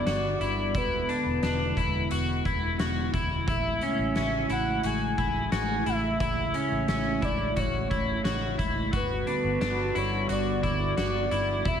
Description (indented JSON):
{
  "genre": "dream pop",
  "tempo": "88 BPM",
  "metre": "4/4",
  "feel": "straight",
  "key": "A major",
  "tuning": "A4 = 440 Hz",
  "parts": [
    { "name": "soft octave-layered synth lead", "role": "melody", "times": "0.0-11.8 s", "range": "B4 to G#5", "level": "-32 LUFS", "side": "equal", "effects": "chorus, ping-pong delay" },
    { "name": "hollow soft pad", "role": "sustained chords", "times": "0.0-11.8 s", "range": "C#3 to F#4", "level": "-31 LUFS", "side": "equal", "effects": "chorus" },
    { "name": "electric guitar at the edge of break-up", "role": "arpeggios", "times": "0.0-11.8 s", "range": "C#4 to F#4", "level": "-30 LUFS", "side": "left 2 dB", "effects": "analog chorus, ping-pong delay" },
    { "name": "vintage muted fingered electric bass", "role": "bass", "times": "0.0-11.8 s", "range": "E1 to A1", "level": "-32 LUFS", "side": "equal", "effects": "none" },
    { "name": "oversized low-tuned drum kit", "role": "drums", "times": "0.1-11.8 s", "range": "hi-hat, kick drum, snare drum", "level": "-33 LUFS", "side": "equal", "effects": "none" }
  ],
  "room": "moderate plate reverb, RT60 1.9 s, small room reverb",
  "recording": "none",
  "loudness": "-25 LUFS",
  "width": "side -8 dB against mid",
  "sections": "0.0-11.8 A section",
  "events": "none",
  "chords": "0.0 Gmaj7; 0.7 E7; 3.5 Amaj7; 8.9 Gmaj7"
}